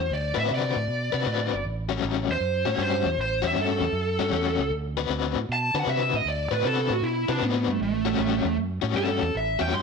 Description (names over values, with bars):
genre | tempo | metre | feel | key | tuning
electric blues shuffle | 156 BPM | 4/4 | swing 67% on 8ths | unclear | A4 = 439 Hz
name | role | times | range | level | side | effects
lead guitar through a small cranked amp | melody | 0.0-9.8 s | A3 to C6 | -26 LUFS | right 2 dB | overdrive
fingered electric bass | bass | 0.0-9.8 s | G1 to D3 | -29 LUFS | right 2 dB | none
overdriven electric guitar | riff | 0.3-9.8 s | A2 to B4 | -28 LUFS | left 12 dB | tremolo
room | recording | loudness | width
light reverb, digital ambience | 1960s-style stereo | -23 LUFS | side -5 dB against mid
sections
0.0-9.8 A section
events
lead electric guitar solo 0.0-9.8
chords
0.1 D6; 1.6 A6; 4.7 D6; 7.8 A6